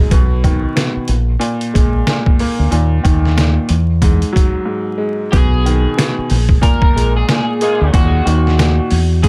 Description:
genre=hip hop, boom-bap hip-hop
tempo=92 BPM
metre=4/4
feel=swing 61% on 16ths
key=Eb minor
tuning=A4 = 442 Hz
part: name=bright upright piano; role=accompaniment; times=0.0-9.3 s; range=G#2 to Bb3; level=-22 LUFS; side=equal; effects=cassette tape, high-pass filter, low-pass filter
part: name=deep dub fingered electric bass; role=bass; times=0.0-9.3 s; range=Bb1 to E2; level=-16 LUFS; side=equal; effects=none
part: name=trip hop sampler-style drum kit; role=drums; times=0.1-9.3 s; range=hi-hat, kick drum, snare drum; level=-17 LUFS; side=equal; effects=none
part: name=electric guitar at the edge of break-up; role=melody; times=5.3-9.3 s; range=Gb4 to Bb4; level=-23 LUFS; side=equal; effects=lush chorus, high-pass filter, low-pass filter
part: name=warm horn section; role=stabs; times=7.6-8.1 s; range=Ab3 to Ab4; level=-24 LUFS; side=equal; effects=high-pass filter, low-pass filter, delay
room=little or no reverb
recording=vinyl crackle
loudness=-14 LUFS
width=mono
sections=0.0-5.3 A section; 5.3-9.3 B section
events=break 4.7-5.3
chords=0.1 B; 1.1 Bb7(no3); 2.7 Eb5; 3.7 Eadd9; 5.3 B6; 6.3 Bb7(no3); 7.9 Ebmadd9

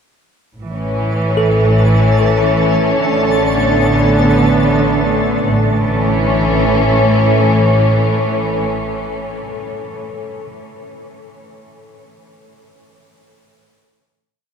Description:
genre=ambient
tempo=73 BPM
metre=3/4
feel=straight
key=A major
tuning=A4 = 438 Hz
part: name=rich symphonic double bass section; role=bass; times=0.5-8.7 s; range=A1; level=-19 LUFS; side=equal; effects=none
part: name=organ-like drone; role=drone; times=1.7-8.8 s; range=A3 to A4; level=-20 LUFS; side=equal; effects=ensemble chorus, built-in reverb
part: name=twinkling granular texture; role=texture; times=1.4-5.5 s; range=A5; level=-28 LUFS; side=equal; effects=built-in reverb, lush chorus
part: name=rich studio string section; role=sustained chords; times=0.6-8.7 s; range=A2 to C#4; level=-15 LUFS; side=equal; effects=none
part: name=bell-like tine electric piano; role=arpeggios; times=1.4-10.5 s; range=A4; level=-24 LUFS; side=left 2 dB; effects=medium stereo tremolo, diffuse ambient delay
room=wet huge ambient reverb, RT60 7.9 s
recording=dreamy mix soaked in reverb, cassette tape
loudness=-11 LUFS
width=side -7 dB against mid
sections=0.6-5.5 A section; 5.5-7.9 final chord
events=fade-in on synth texture 0.6-5.5; fade-out on tine electric piano 0.6-5.5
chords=0.6 A; 3.0 Bmadd9/A; 5.5 A

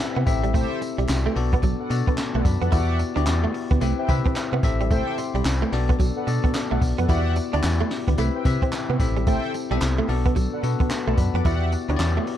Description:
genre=R&B, new jack swing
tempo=110 BPM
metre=4/4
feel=swing 62% on 16ths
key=E minor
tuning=A4 = 440 Hz
part: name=bell-like tine electric piano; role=accompaniment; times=0.0-12.4 s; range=B3 to D6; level=-27 LUFS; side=left 6 dB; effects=wide subtle chorus
part: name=jazz brush drum kit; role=drums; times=0.0-12.4 s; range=handclaps, hi-hat, kick drum, snare drum, tambourine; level=-25 LUFS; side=equal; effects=none
part: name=group handclap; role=percussion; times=0.0-12.2 s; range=none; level=-46 LUFS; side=right 6 dB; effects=none
part: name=direct-recorded clean electric guitar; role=riff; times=0.2-12.3 s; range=F#3 to E4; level=-29 LUFS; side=right 7 dB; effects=tube saturation, ensemble chorus
part: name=solid FM bass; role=bass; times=0.2-12.2 s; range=A1 to C3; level=-23 LUFS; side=equal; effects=none
part: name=mellow synth brass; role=stabs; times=0.5-11.7 s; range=G4 to G5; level=-33 LUFS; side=equal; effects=chorus
room=studio reverb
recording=dark, warm production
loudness=-20 LUFS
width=side -11 dB against mid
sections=0.0-12.4 A section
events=tine electric piano fill 10.6-11.5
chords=0.3 Am7; 1.4 Bm7; 2.7 Em9; 3.8 Cmaj7; 4.6 Am7; 5.7 Bm7; 7.1 Em9; 8.2 Cmaj7; 9.0 Am7; 10.1 Bm7; 11.5 Em9

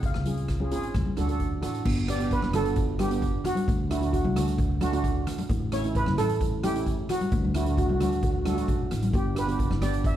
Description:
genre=calypso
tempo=132 BPM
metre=4/4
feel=straight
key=G major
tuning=A4 = 435 Hz
part: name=steel pan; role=melody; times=0.0-10.2 s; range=E4 to E#5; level=-31 LUFS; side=right 1 dB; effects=none
part: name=steel pan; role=accompaniment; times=0.0-10.1 s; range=A3 to A4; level=-31 LUFS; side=right 5 dB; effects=none
part: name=upright bass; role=bass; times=0.0-10.2 s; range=E1 to D2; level=-29 LUFS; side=equal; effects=none
part: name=street-band drum kit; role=drums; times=0.0-10.2 s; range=crash cymbal, hi-hat, kick drum, rim click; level=-29 LUFS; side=equal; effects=none
part: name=congas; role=percussion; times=0.1-9.9 s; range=none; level=-33 LUFS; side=left 3 dB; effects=none
room=light reverb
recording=dark, warm production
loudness=-24 LUFS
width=side -11 dB against mid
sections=0.0-1.9 A section; 1.9-10.2 B section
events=none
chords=0.0 C#; 0.9 D; 1.9 G; 3.7 D; 5.5 A; 7.3 D; 9.1 G

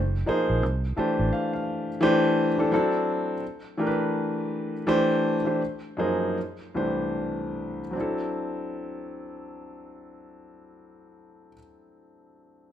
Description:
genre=R&B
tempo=73-86 BPM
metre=4/4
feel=swing 62% on 16ths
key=unclear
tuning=A4 = 438 Hz
part: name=vintage muted fingered electric bass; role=bass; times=0.0-1.3 s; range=F#1 to C2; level=-25 LUFS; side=right 1 dB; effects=none
part: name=clear concert grand piano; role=accompaniment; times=0.3-12.7 s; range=C2 to A5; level=-24 LUFS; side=left 1 dB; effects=plate reverb
room=wet studio reverb, RT60 0.6 s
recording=rough home demo mix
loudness=-24 LUFS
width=side -10 dB against mid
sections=0.0-7.9 A section; 7.9-11.2 B section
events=grand piano fill 0.6-2.0; slowing down 2.0-7.9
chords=0.0 F#6; 0.6 Fmaj13/A; 2.0 Dsus2; 2.7 D9; 3.4 G69; 4.9 C69; 5.6 F#6; 6.4 C69; 7.9 D9

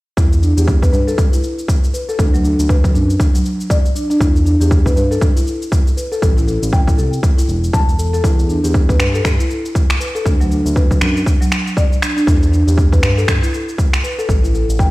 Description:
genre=afro house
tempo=119 BPM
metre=4/4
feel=swing 59% on 16ths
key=E minor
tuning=A4 = 442 Hz
part: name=buzzing marimba with soft mallets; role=arpeggios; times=0.2-14.9 s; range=F#3 to A5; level=-19 LUFS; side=equal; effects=sidechain pumping, low-pass filter, digital delay
part: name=smooth gliding synth bass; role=bass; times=0.2-14.9 s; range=E1 to G2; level=-16 LUFS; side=equal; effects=sidechain pumping
part: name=electronic kick drum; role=drums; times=0.2-14.9 s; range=none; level=-14 LUFS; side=equal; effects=overdrive
part: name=electronic shaker and finger snaps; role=drums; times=0.2-14.9 s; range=none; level=-25 LUFS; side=equal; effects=overdrive
room=digital ambience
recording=played on a big sound system in a bare room, stone room reverb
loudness=-12 LUFS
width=side -19 dB against mid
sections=0.2-14.9 A section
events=none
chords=0.2 Em; 2.2 D; 4.2 Em; 6.2 A5; 8.2 Em; 10.3 D; 12.3 Em; 14.3 N.C.

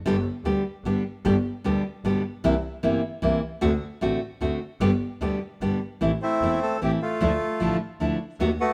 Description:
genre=tango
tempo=151 BPM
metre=3/4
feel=rubato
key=unclear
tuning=A4 = 440 Hz
part: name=bright double bass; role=bass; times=0.0-8.6 s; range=E1 to D#2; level=-31 LUFS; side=equal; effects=none
part: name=nylon-string guitar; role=accompaniment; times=0.1-8.5 s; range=B2 to G4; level=-27 LUFS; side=equal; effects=none
part: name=bandoneon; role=melody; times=6.2-8.7 s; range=A3 to A4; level=-27 LUFS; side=equal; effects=none
room=moderate stone room reverb, RT60 1.1 s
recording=band playing live in one room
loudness=-25 LUFS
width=mono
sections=0.0-6.0 A section; 6.0-8.7 B section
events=none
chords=0.1 G; 2.4 C7; 3.6 D7; 4.8 G; 6.0 Am; 7.2 Dmadd9

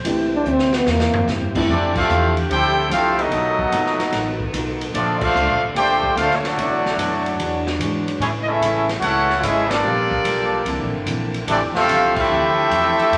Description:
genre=jazz, big band swing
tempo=147 BPM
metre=4/4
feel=swing 67% on 8ths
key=F major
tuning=A4 = 442 Hz
part: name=vintage hollow-body jazz guitar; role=accompaniment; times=0.0-13.2 s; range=F2 to C#5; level=-32 LUFS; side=equal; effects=none
part: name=warm saxophone section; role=sustained chords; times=0.0-13.2 s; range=Bb2 to E5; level=-31 LUFS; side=equal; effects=none
part: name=upright bass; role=bass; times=0.0-13.2 s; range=E1 to A2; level=-30 LUFS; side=equal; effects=none
part: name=swinging big-band drum kit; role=drums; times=0.0-13.2 s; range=crash cymbal, hi-hat, kick drum, ride cymbal, snare drum, toms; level=-30 LUFS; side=equal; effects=none
part: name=dark baby grand piano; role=accompaniment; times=0.1-1.7 s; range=F2 to G4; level=-25 LUFS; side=equal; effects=none
part: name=dark trombone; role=melody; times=0.3-1.3 s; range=Bb3 to D4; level=-21 LUFS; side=equal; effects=none
part: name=clear trumpet section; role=melody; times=1.7-13.2 s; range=A3 to G5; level=-22 LUFS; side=equal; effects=none
part: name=muted trombone section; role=second line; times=1.7-13.2 s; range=E3 to G4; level=-24 LUFS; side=equal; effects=none
room=wet large studio reverb, RT60 1.1 s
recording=none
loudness=-19 LUFS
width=mono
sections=0.0-1.7 A section; 1.7-13.2 B section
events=trombone solo 0.0-1.7; drum fill 0.5-1.3; band accent 1.9, 5.1, 9.6, 12.1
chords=0.1 C7; 1.7 Fmaj13; 3.3 B7#11; 4.9 Bbmaj9; 6.6 Bm11; 7.4 E13; 8.2 Amaj7; 9.8 Gm9; 10.7 C9; 11.5 Fmaj13

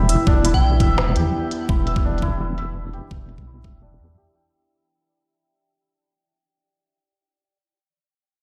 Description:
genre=half-time drum and bass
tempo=169 BPM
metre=4/4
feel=half-time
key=E minor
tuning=A4 = 441 Hz
part: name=bowed-like drone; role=sustained chords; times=0.0-4.5 s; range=E3 to E4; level=-30 LUFS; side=equal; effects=built-in reverb, vintage 12-bit sampler grit, sidechain pumping
part: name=santur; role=arpeggios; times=0.0-7.6 s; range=D4 to E5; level=-29 LUFS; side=equal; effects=low-pass filter, dub echo
part: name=deep soft wobble bass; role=bass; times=0.0-4.2 s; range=E1 to E2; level=-23 LUFS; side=equal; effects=chorus
part: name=organic electronic drum kit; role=drums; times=0.1-4.4 s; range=hi-hat, snare drum, toms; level=-29 LUFS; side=equal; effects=overdrive, low-pass filter on hats, low-pass filter on toms, low-pass filter on snare, low-pass filter on room
part: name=electronic kick drum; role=drums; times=0.3-3.7 s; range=none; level=-22 LUFS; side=equal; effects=overdrive
part: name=glassy synth bell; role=melody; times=0.5-0.9 s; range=G5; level=-32 LUFS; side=equal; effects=chorus, tremolo, tape echo
room=digital ambience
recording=played on a big sound system in a bare room, stone room reverb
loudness=-19 LUFS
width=mono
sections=0.0-4.5 A section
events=fade-out 0.0-4.5; filter sweep on santur 0.0-4.5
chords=0.0 Em

